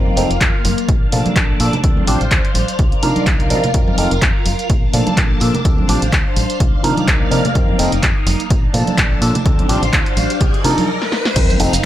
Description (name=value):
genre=filtered disco house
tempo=126 BPM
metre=4/4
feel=swing 56% on 16ths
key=F mixolydian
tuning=A4 = 440 Hz
part: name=barky tine electric piano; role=accompaniment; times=0.0-11.7 s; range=F3 to Bb4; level=-20 LUFS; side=equal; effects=phaser, sidechain pumping, low-pass filter
part: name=phased string machine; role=sustained chords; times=0.0-11.9 s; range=Eb3 to A5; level=-22 LUFS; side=left 1 dB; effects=ensemble chorus, phaser, sidechain pumping, low-pass filter
part: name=deep dub fingered electric bass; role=bass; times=0.0-11.8 s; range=F1 to C3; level=-20 LUFS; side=equal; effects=tube saturation, sidechain pumping, low-pass filter
part: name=congas and tambourine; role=percussion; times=0.1-11.8 s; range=none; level=-24 LUFS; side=right 4 dB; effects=sidechain pumping on perc, low-pass filter on perc
part: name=punchy analog drum machine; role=drums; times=0.2-11.8 s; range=crash cymbal, handclaps, hi-hat, shaker, snare drum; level=-20 LUFS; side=equal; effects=sidechain pumping on hats, sidechain pumping on cymbals, sidechain pumping on perc
part: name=electronic kick drum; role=drums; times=0.4-11.5 s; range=none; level=-16 LUFS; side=equal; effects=none
part: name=riser and sub drop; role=sound effects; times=9.1-11.9 s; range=none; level=-24 LUFS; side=left 1 dB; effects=none
room=little or no reverb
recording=none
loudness=-13 LUFS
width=side -13 dB against mid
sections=0.0-11.4 A section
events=riser 9.1-11.4; stop 10.9-11.4; drum fill 11.0-11.4; impact 11.4-11.9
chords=0.0 F7sus4; 0.9 Bbmaj7; 1.8 Dm7; 2.8 Cm11; 3.7 F7sus4; 4.7 Bbmaj7; 5.6 Dm7; 6.6 Cm11; 7.6 F7sus4; 8.5 Bbmaj7; 9.5 Dm7; 10.4 Cm11